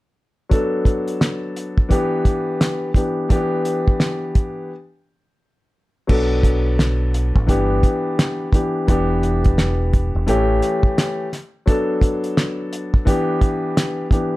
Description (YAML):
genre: hip hop, boom-bap hip-hop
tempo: 86 BPM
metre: 4/4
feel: swing 62% on 16ths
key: B minor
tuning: A4 = 440 Hz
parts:
  - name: dark grand piano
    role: accompaniment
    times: 0.5-14.4 s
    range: E3 to A4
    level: -20 LUFS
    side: left 1 dB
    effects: cassette tape, high-pass filter, low-pass filter
  - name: cloth-damped thuddy drum kit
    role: drums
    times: 0.5-14.3 s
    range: crash cymbal, hi-hat, kick drum, snare drum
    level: -17 LUFS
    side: equal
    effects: none
  - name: deep dub fingered electric bass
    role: bass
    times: 6.1-10.6 s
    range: E1 to B1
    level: -20 LUFS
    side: equal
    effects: none
room: moderate studio reverb, RT60 0.6 s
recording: none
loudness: -17 LUFS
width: side -18 dB against mid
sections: 0.5-6.1 A section; 6.1-14.4 B section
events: break 4.7-6.1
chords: 0.5 Bm7; 1.9 Em7; 4.7 N.C.; 6.1 Bm7; 7.5 G6; 8.9 Em7; 10.3 A7; 11.7 Bm7; 13.1 Em7